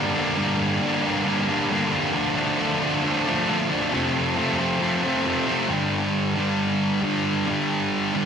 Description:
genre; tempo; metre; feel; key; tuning
rock; 135 BPM; 4/4; straight; G minor; A4 = 444 Hz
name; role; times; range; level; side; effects
thick fuzz guitar; solo; 0.0-8.3 s; F2 to D4; -21 LUFS; equal; distortion, slapback echo, tape echo
room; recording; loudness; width
wet lush hall reverb, RT60 2.0 s; big arena sound; -21 LUFS; side -7 dB against mid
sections
0.0-5.7 A section; 5.7-8.3 B section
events
none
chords
0.0 Gm; 2.2 Dm; 3.9 F; 5.7 G5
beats
| 0.38 0.82 1.27 1.71 | 2.15 2.60 3.04 3.48 | 3.92 4.37 4.81 5.26 | 5.70 6.14 6.59 7.03 | 7.48 7.92

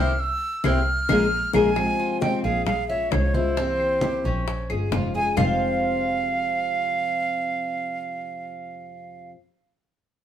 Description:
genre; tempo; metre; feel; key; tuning
latin, Cuban son and guajira; 133 BPM; 4/4; straight; F harmonic minor; A4 = 441 Hz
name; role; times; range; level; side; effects
breathy silver concert flute; melody; 0.0-9.3 s; C5 to F6; -25 LUFS; right 3 dB; none
flamenco guitar; accompaniment; 0.0-9.4 s; F2 to F4; -29 LUFS; left 2 dB; none
Cuban tres; arpeggios; 0.0-9.3 s; C4 to F5; -27 LUFS; left 3 dB; none
muted double bass; bass; 0.0-9.3 s; F1 to C2; -27 LUFS; equal; none
bongos; percussion; 0.6-5.5 s; none; -31 LUFS; left 7 dB; none
claves; percussion; 0.6-5.5 s; none; -35 LUFS; left 3 dB; none
congas; percussion; 0.6-5.5 s; none; -30 LUFS; equal; none
room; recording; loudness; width
moderate studio reverb, RT60 0.7 s; band playing live in one room; -21 LUFS; side -10 dB against mid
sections
0.0-1.8 A section; 1.8-5.4 B section; 5.4-9.0 C section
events
band accent 0.0-1.8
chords
0.0 C7; 0.9 Bbm7; 1.8 Fm; 2.7 Bbm7; 3.6 C7; 4.5 Bbm7; 5.4 Fm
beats
0.42 0.87 1.32 | 1.77 2.22 2.67 3.12 | 3.57 4.02 4.47 4.92 | 5.38 5.83 6.28 6.73 | 7.18 7.63 8.08 8.53

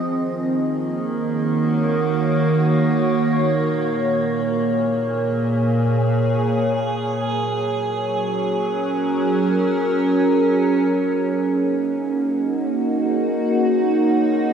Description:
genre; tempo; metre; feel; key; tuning
ambient; free time; none; none; unclear; A4 = 440 Hz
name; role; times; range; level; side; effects
evolving wavetable pad; solo; 0.0-14.5 s; Bb2 to Eb5; -18 LUFS; right 1 dB; chorus, built-in reverb, dub echo
room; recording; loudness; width
wet echo chamber reverb, RT60 2.2 s; echo-heavy mix; -18 LUFS; side -7 dB against mid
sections
0.0-10.9 A section; 10.9-14.5 B section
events
none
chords
0.0 Ebm7; 3.5 Bbm7; 7.2 Gbadd9; 10.9 Ebm7/Bb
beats
free time

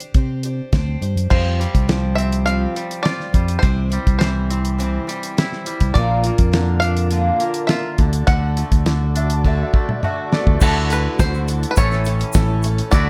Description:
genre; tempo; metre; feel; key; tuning
folk rock and heartland rock; 103 BPM; 4/4; straight; unclear; A4 = 439 Hz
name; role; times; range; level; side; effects
picked twelve-string acoustic guitar; accompaniment; 0.0-13.1 s; A2 to C5; -30 LUFS; equal; none
damped 70s drum kit; drums; 0.0-13.1 s; crash cymbal, hi-hat, kick drum, snare drum, toms; -20 LUFS; equal; none
fingered electric bass; bass; 0.1-13.1 s; A1 to C3; -22 LUFS; equal; none
bluegrass banjo; melody; 1.3-13.1 s; A4 to F#5; -27 LUFS; equal; none
twangy electric guitar; riff; 1.3-13.1 s; A2 to A4; -30 LUFS; equal; none
tonewheel organ; sustained chords; 6.0-13.1 s; G3 to D5; -36 LUFS; equal; none
dark upright piano; second line; 9.2-10.6 s; D5 to A5; -30 LUFS; equal; none
clear concert grand piano; accompaniment; 10.6-13.1 s; F#4 to F#5; -37 LUFS; equal; none
tube shaker; percussion; 10.6-13.1 s; none; -37 LUFS; equal; none
room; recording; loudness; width
light reverb; none; -18 LUFS; mono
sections
0.0-1.3 A section; 1.3-10.6 B section; 10.6-13.1 C section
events
drum fill 9.4-10.6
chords
0.0 Csus2; 1.3 Fsus2; 3.6 C; 6.0 Bb; 8.0 D; 10.6 Dadd9; 11.8 A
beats
0.14 0.72 | 1.30 1.89 2.47 3.05 | 3.63 4.21 4.79 5.37 | 5.96 6.54 7.12 7.70 | 8.28 8.86 9.44 10.03 | 10.61 11.19 11.77 12.34 | 12.92

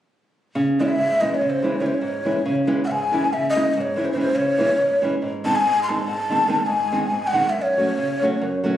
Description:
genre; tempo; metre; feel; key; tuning
balkan folk; free time; none; none; C# harmonic minor; A4 = 440 Hz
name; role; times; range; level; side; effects
nylon-string guitar; accompaniment; 0.6-8.8 s; F#2 to F#4; -22 LUFS; right 1 dB; none
breathy mellow ney; melody; 0.8-8.5 s; B#4 to B#5; -20 LUFS; left 1 dB; none
room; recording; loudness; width
wet recital hall reverb, RT60 1.4 s; recorded on a phone in the room, club reverb, compression; -18 LUFS; side -11 dB against mid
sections
0.6-8.8 A section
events
none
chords
0.6 C#m; 5.2 G#; 7.6 F#m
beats
free time

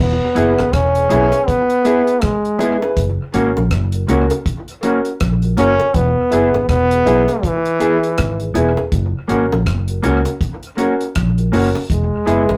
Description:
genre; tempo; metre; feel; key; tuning
roots reggae; 81 BPM; 4/4; swing 59% on 16ths; E lydian; A4 = 440 Hz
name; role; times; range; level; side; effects
brilliant trombone; melody; 0.0-12.6 s; E3 to C#4; -18 LUFS; equal; none
vintage muted fingered electric bass; bass; 0.0-12.6 s; E1 to C#2; -21 LUFS; equal; none
clean electric guitar; accompaniment; 0.3-12.4 s; A#3 to G#4; -22 LUFS; equal; none
warm upright piano; stabs; 0.4-12.5 s; C#4 to B4; -23 LUFS; equal; none
deep reggae drum kit; drums; 0.4-12.5 s; hi-hat, kick drum, rim click; -25 LUFS; equal; dub echo
bongos; percussion; 0.6-12.6 s; none; -30 LUFS; equal; dub echo
room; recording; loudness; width
moderate small room reverb, RT60 0.6 s; rough rehearsal-room recording, tube saturation; -16 LUFS; mono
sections
0.0-12.6 A section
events
none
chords
0.0 E; 3.0 F#; 5.9 E; 8.9 F#; 11.9 E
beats
0.73 1.48 2.22 | 2.97 3.71 4.46 5.20 | 5.94 6.69 7.43 8.18 | 8.92 9.66 10.41 11.15 | 11.90

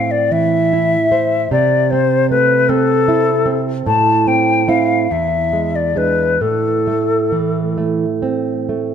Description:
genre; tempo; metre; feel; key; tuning
romantic duo for flute and classical guitar; 43-53 BPM (dotted quarters); 6/8; rubato; A minor; A4 = 440 Hz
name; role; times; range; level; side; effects
hollow concert flute; melody; 0.0-7.8 s; A4 to A5; -15 LUFS; left 5 dB; none
nylon-string guitar; accompaniment; 0.0-8.9 s; E2 to C5; -17 LUFS; right 5 dB; none
room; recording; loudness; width
light reverb; none; -13 LUFS; side -8 dB against mid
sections
0.0-8.9 A section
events
none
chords
0.0 Am; 1.5 Am/C; 3.9 Am; 5.1 E7; 6.4 Am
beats
0.31 | 1.51 2.68 | 3.85 5.10 | 6.41 7.78

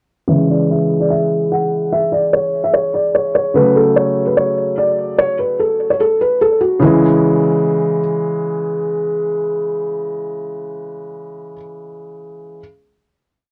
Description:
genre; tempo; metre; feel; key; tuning
hip hop; 147 BPM; 4/4; half-time; C# phrygian; A4 = 441 Hz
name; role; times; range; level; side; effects
felt-muted upright piano; melody; 0.3-8.0 s; E4 to F#5; -17 LUFS; equal; low-pass filter
dark baby grand piano; accompaniment; 0.3-12.6 s; C#3 to A3; -20 LUFS; equal; low-pass filter
room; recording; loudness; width
light reverb; dry, gritty hardware recording; -16 LUFS; mono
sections
0.3-6.8 breakdown; 6.8-10.1 final chord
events
filter sweep 0.3-6.8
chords
0.3 C#m; 3.6 F#m; 6.8 C#m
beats
| 0.29 0.70 1.10 1.51 | 1.92 2.33 2.74 3.15 | 3.55 3.96 4.37 4.78 | 5.19 5.59 6.00 6.41 | 6.82 7.23 7.64 8.04 | 8.45 8.86 9.27 9.68

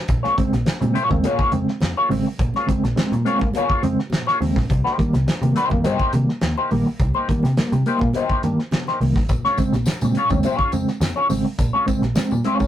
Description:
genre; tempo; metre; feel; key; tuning
funk; 104 BPM; 4/4; straight; Bb dorian; A4 = 443 Hz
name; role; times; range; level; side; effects
electric guitar at the edge of break-up; accompaniment; 0.1-12.7 s; Bb3 to Db5; -21 LUFS; left 2 dB; wah
mellow reed electric piano; stabs; 0.1-12.6 s; Bb2 to C4; -22 LUFS; right 1 dB; tremolo
vintage muted picked electric bass; bass; 0.1-12.7 s; Ab1 to C3; -22 LUFS; equal; none
cloth-damped thuddy drum kit; drums; 0.1-12.7 s; hi-hat, kick drum, snare drum; -23 LUFS; equal; none
congas; percussion; 0.1-12.7 s; none; -32 LUFS; equal; none
tambourine; percussion; 9.3-12.7 s; none; -39 LUFS; left 4 dB; none
room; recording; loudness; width
moderate booth ambience, RT60 0.2 s; rough rehearsal-room recording, tube saturation; -17 LUFS; side -11 dB against mid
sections
0.1-12.7 A section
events
none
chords
0.1 Bbm7; 4.7 Cm7; 9.3 Bbm7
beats
| 0.09 0.67 1.24 1.82 | 2.39 2.97 3.54 4.12 | 4.69 5.27 5.84 6.42 | 6.99 7.57 8.14 8.72 | 9.29 9.87 10.44 11.01 | 11.59 12.16

